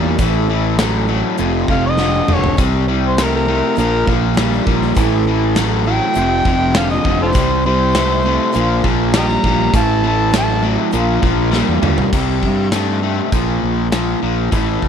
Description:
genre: classic rock.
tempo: 100 BPM.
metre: 4/4.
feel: straight.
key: unclear.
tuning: A4 = 436 Hz.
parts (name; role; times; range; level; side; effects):
picked steel-string acoustic guitar; accompaniment; 0.0-12.1 s; A2 to C5; -25 LUFS; right 4 dB; none.
crunchy overdriven guitar; riff; 0.0-14.9 s; F2 to A3; -19 LUFS; left 18 dB; none.
raw garage guitar; riff; 0.0-14.9 s; F2 to A3; -21 LUFS; right 17 dB; overdrive.
fuzz fingered electric bass; bass; 0.0-14.9 s; F1 to G2; -19 LUFS; equal; overdrive.
gated 80s drum kit; drums; 0.2-14.9 s; crash cymbal, hi-hat, kick drum, snare drum, toms; -19 LUFS; equal; none.
overdriven harmonica; melody; 1.7-10.7 s; F4 to Bb5; -20 LUFS; equal; none.
room: little or no reverb.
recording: none.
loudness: -13 LUFS.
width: side -8 dB against mid.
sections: 0.0-12.1 A section; 12.1-14.9 B section.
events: harmonica solo 0.0-12.1; drum fill 2.0-2.6, 11.5-12.1.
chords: 0.2 Am; 1.4 F; 2.6 C; 3.8 Bb; 5.0 Am; 6.2 F; 7.4 C; 8.6 Bb; 9.7 Am; 10.9 Bb; 12.1 C5; 13.3 Bb5.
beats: | 0.20 0.79 1.39 1.99 | 2.59 3.18 3.78 4.38 | 4.97 5.57 6.17 6.76 | 7.36 7.96 8.55 9.15 | 9.74 10.34 10.94 11.53 | 12.13 12.73 13.33 13.93 | 14.52.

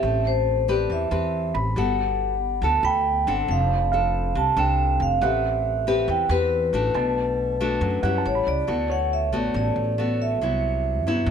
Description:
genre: bossa nova.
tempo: 139 BPM.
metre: 4/4.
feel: straight.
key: unclear.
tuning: A4 = 440 Hz.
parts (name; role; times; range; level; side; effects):
vibraphone with medium mallets; melody; 0.0-11.3 s; B4 to A5; -24 LUFS; right 1 dB; none.
nylon-string guitar; accompaniment; 0.0-11.3 s; G2 to B4; -27 LUFS; left 4 dB; none.
warm concert grand piano; accompaniment; 0.0-10.4 s; C#5 to B5; -33 LUFS; right 2 dB; none.
upright bass; bass; 0.0-11.3 s; F1 to G2; -26 LUFS; equal; none.
room: light reverb.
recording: close, detailed microphones.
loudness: -20 LUFS.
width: side -7 dB against mid.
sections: 0.0-8.7 A section; 8.7-11.3 B section.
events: none.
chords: 0.0 Am9; 1.8 Gmaj9; 3.5 F6; 5.2 Am9; 6.9 Bm7; 8.2 A7; 8.7 D6; 10.4 Cmaj7#11.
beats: | 0.03 0.46 0.89 1.33 | 1.76 2.19 2.62 3.06 | 3.49 3.92 4.35 4.78 | 5.22 5.65 6.08 6.51 | 6.95 7.38 7.81 8.24 | 8.68 9.11 9.54 9.97 | 10.40 10.84 11.27.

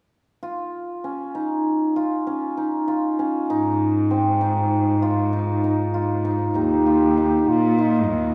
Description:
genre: contemporary instrumental, chamber music in an uneven meter.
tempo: 195 BPM (eighths).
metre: 5/8.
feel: straight.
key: Eb mixolydian.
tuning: A4 = 441 Hz.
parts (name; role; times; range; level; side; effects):
cimbalom; arpeggios; 0.4-8.3 s; C4 to F4; -23 LUFS; equal; none.
clear cello; bass; 3.5-8.3 s; Eb2 to Bb2; -25 LUFS; equal; none.
mellow flugelhorn; melody; 6.6-8.3 s; Eb4 to G4; -26 LUFS; equal; none.
room: moderate recital hall reverb, RT60 1.5 s.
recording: recorded in a church or concert hall.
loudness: -21 LUFS.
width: mono.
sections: 0.4-6.6 A section; 6.6-8.3 B section.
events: none.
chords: 0.4 Ebsus2; 3.5 Ab; 6.6 Ebadd9.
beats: | 0.42 0.73 1.03 1.34 1.65 | 1.96 2.26 2.57 2.88 3.19 | 3.49 3.80 4.11 4.41 4.72 | 5.03 5.33 5.64 5.95 6.25 | 6.56 6.87 7.18 7.48 7.79 | 8.10.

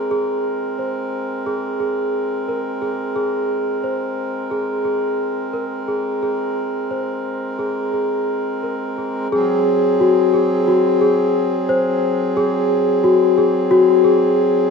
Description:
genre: contemporary instrumental, chamber music in an uneven meter.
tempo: 177 BPM (eighths).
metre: 9/8.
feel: straight.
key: Ab mixolydian.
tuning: A4 = 441 Hz.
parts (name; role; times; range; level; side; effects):
pedal harmonium; sustained chords; 0.0-14.7 s; Gb3 to Bb4; -21 LUFS; right 1 dB; none.
celesta; arpeggios; 0.0-14.6 s; Gb4 to C5; -18 LUFS; left 2 dB; none.
room: wet concert hall reverb, RT60 2.1 s.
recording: none.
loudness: -16 LUFS.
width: side -5 dB against mid.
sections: 0.0-9.3 A section; 9.3-14.7 B section.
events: none.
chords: 0.0 Abadd9; 9.3 Ab7.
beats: | 0.11 0.45 0.79 1.13 1.47 1.81 2.15 2.48 2.82 | 3.16 3.50 3.84 4.17 4.51 4.85 5.19 5.53 5.87 | 6.21 6.56 6.90 7.24 7.59 7.93 8.28 8.63 8.97 | 9.32 9.66 10.00 10.34 10.68 11.02 11.36 11.69 12.03 | 12.37 12.70 13.04 13.37 13.71 14.04 14.38.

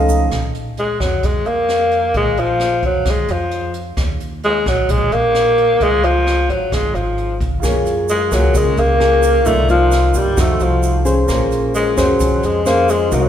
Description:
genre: bossa nova.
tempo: 131 BPM.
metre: 4/4.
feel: straight.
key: Bb minor.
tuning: A4 = 439 Hz.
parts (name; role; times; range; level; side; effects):
nylon-string guitar; accompaniment; 0.0-0.3, 7.6-13.3 s; C3 to C5; -18 LUFS; left 1 dB; none.
warm grand piano; accompaniment; 0.0-0.3, 7.6-13.3 s; A3 to F5; -24 LUFS; right 3 dB; none.
upright bass; bass; 0.0-13.3 s; Ab1 to G2; -20 LUFS; equal; none.
jazz brush drum kit; drums; 0.1-13.2 s; hi-hat, kick drum, rim click; -22 LUFS; equal; none.
egg shaker; percussion; 0.1-0.3, 7.6-13.3 s; none; -32 LUFS; right 8 dB; none.
growling alto saxophone; melody; 0.8-13.3 s; F3 to Bb3; -16 LUFS; left 1 dB; none.
room: moderate concert hall reverb, RT60 2.1 s.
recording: recorded in a church or concert hall.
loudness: -13 LUFS.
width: side -10 dB against mid.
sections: 0.3-13.3 A section.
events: none.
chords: 0.3 Bb5; 4.0 Eb5; 5.8 Db; 7.6 Gbmaj9; 9.5 Cm11; 10.4 F7b9; 11.3 Bbm9.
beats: | 0.32 0.77 1.23 1.69 | 2.14 2.60 3.06 3.51 | 3.97 4.43 4.88 5.34 | 5.80 6.26 6.71 7.17 | 7.63 8.09 8.54 9.00 | 9.46 9.92 10.37 10.83 | 11.29 11.75 12.20 12.66 | 13.12.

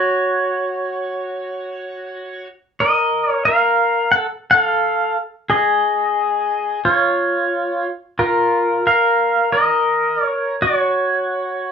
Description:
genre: hawaiian.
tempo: 89 BPM.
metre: 4/4.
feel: swing 59% on 8ths.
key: Bb minor.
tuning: A4 = 440 Hz.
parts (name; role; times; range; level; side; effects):
pedal steel guitar; solo; 0.0-11.7 s; F4 to Gb5; -16 LUFS; equal; none.
room: moderate studio reverb, RT60 0.5 s.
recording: band playing live in one room.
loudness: -15 LUFS.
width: side -7 dB against mid.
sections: 0.0-8.2 A section; 8.2-11.7 A section.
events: none.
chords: 0.1 N.C.; 5.5 Fm7; 8.2 Bb5; 10.9 N.C..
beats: | 0.07 0.75 1.42 2.10 | 2.77 3.45 4.12 4.80 | 5.47 6.15 6.82 7.50 | 8.17 8.85 9.52 10.20 | 10.87 11.54.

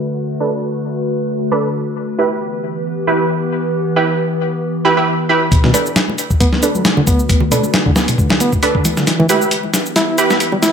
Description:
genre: breakbeat, breaks.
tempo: 135 BPM.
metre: 4/4.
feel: swing 55% on 16ths.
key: B minor.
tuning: A4 = 435 Hz.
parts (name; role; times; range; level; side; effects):
warbly tape-like pad; sustained chords; 0.0-10.7 s; D3 to B4; -20 LUFS; left 1 dB; chorus, built-in reverb, phaser, sidechain pumping.
orchestra-hit-like synth stab; stabs; 0.4-10.4 s; D4 to B4; -17 LUFS; right 3 dB; built-in reverb, ping-pong delay.
reed electric piano; riff; 5.5-10.7 s; B2 to E4; -18 LUFS; equal; fast tremolo, low-pass filter, ping-pong delay.
dusty soul sampler-style drum kit; drums; 5.5-10.7 s; hi-hat, kick drum, snare drum; -15 LUFS; equal; none.
shaker; drums; 5.5-10.7 s; none; -26 LUFS; equal; none.
congas; percussion; 5.6-10.7 s; none; -24 LUFS; right 1 dB; none.
room: moderate digital room reverb, RT60 1.2 s.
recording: high-pass filter, low-pass filter.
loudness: -13 LUFS.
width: side -7 dB against mid.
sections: 0.0-5.5 A section; 5.5-10.7 B section.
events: filter sweep on synth stab 0.0-5.5; filter sweep 0.0-5.5; build-up 5.5-10.7; filter sweep on reed electric piano 5.5-10.7; filter sweep on ambient pad 5.5-10.7; drum fill 9.1-10.7.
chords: 0.0 Bm7; 2.0 Em; 5.5 Bm7; 9.1 Em.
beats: | 0.18 0.63 1.07 1.52 | 1.96 2.40 2.85 3.29 | 3.74 4.18 4.63 5.07 | 5.52 5.96 6.41 6.85 | 7.29 7.74 8.18 8.63 | 9.07 9.52 9.96 10.40.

